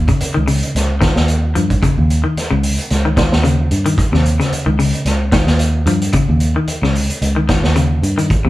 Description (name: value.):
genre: afrobeat.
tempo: 111 BPM.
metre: 4/4.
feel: swing 55% on 16ths.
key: Eb mixolydian.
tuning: A4 = 440 Hz.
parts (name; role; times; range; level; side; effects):
fingered electric bass; bass; 0.0-8.5 s; Db2 to G2; -16 LUFS; equal; none.
electric guitar at the edge of break-up; arpeggios; 0.1-8.5 s; C3 to F3; -19 LUFS; left 3 dB; none.
vintage drum kit; drums; 0.1-8.4 s; hi-hat, kick drum, snare drum; -18 LUFS; equal; none.
room: moderate large studio reverb, RT60 1.4 s.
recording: band playing live in one room.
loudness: -13 LUFS.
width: side -16 dB against mid.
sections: 0.0-8.5 A section.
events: none.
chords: 0.0 Eb7(no3).